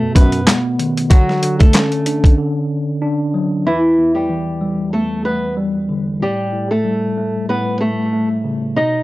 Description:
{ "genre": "hip hop, boom-bap hip-hop", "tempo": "94 BPM", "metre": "4/4", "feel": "swing 57% on 16ths", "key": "E dorian", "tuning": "A4 = 440 Hz", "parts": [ { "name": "flamenco guitar", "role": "melody", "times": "0.0-9.0 s", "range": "E3 to D#5", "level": "-17 LUFS", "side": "equal", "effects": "high-pass filter, low-pass filter" }, { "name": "mellow tine electric piano", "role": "accompaniment", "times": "0.0-9.0 s", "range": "E2 to D4", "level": "-19 LUFS", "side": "equal", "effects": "medium stereo tremolo, cassette tape, high-pass filter, low-pass filter" }, { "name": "boom bap sampler-style drum kit", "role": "drums", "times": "0.2-2.4 s", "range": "handclaps, hi-hat, kick drum, snare drum", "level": "-11 LUFS", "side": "equal", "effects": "none" } ], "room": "light reverb", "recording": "dry, gritty hardware recording, cassette tape", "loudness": "-14 LUFS", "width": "side -18 dB against mid", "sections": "0.0-3.7 A section; 3.7-9.0 B section", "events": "break 2.4-3.7", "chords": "0.0 B7; 1.1 Dmaj7; 3.7 Em7; 6.2 A7", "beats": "0.47 | 1.10 1.74 2.38 3.02 | 3.66 4.30 4.93 5.57 | 6.21 6.85 7.49 8.13 | 8.76" }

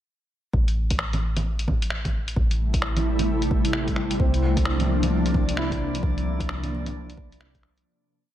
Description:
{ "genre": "future garage", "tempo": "131 BPM", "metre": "4/4", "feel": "swing 63% on 16ths", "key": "A phrygian", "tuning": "A4 = 440 Hz", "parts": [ { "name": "soft 808-style bass", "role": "bass", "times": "0.5-7.8 s", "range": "A1 to C2", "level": "-26 LUFS", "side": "equal", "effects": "sidechain pumping" }, { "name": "electronic kick drum", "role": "drums", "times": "0.5-7.6 s", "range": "none", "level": "-26 LUFS", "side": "equal", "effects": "overdrive" }, { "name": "lo-fi sampler-style drum kit", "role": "drums", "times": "0.7-7.8 s", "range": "bongos, finger snaps, hi-hat", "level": "-30 LUFS", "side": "right 1 dB", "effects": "none" }, { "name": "ethereal airy pad", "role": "sustained chords", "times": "2.6-7.8 s", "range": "C3 to E4", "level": "-26 LUFS", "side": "equal", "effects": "ensemble chorus, built-in reverb, sidechain pumping" }, { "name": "felt-muted upright piano", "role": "accompaniment", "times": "4.2-7.9 s", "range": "C4 to E4", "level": "-34 LUFS", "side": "right 2 dB", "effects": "sidechain pumping, diffuse ambient delay" }, { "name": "drifting glass-harmonics texture", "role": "texture", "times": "4.9-7.9 s", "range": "D5", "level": "-40 LUFS", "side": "right 2 dB", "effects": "chorus, built-in reverb" } ], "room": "light reverb", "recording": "none", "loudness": "-22 LUFS", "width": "side -12 dB against mid", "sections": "0.5-7.9 groove", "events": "fade-out 5.4-7.9", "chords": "0.5 Am7; 4.2 C9sus4", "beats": "| 0.53 0.99 1.45 1.91 | 2.37 2.82 3.28 3.74 | 4.20 4.66 5.11 5.57 | 6.03 6.49 6.95 7.40" }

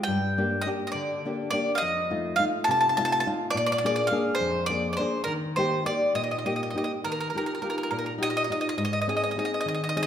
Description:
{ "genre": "italian folk, Italian serenade", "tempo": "69 BPM (dotted quarters)", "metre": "6/8", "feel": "straight", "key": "Eb major", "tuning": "A4 = 439 Hz", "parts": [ { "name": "bowl-back mandolin", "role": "melody", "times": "0.0-10.1 s", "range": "Bb4 to A5", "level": "-26 LUFS", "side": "equal", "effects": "none" }, { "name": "nylon-string guitar", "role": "accompaniment", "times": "0.1-10.1 s", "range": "F2 to Ab4", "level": "-28 LUFS", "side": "left 2 dB", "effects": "none" } ], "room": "wet recital hall reverb, RT60 1.8 s", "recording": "minimal, uncompressed stereo recording", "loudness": "-24 LUFS", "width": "side -9 dB against mid", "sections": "0.0-7.0 A section; 7.0-10.1 A section", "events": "none", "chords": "0.1 Gm; 1.8 F7; 3.5 Bb7; 5.3 Eb; 7.0 Ebadd9; 8.8 Ab", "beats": "| 0.07 0.94 | 1.81 2.68 | 3.54 4.40 | 5.26 6.14 | 7.03 7.91 | 8.78 9.65" }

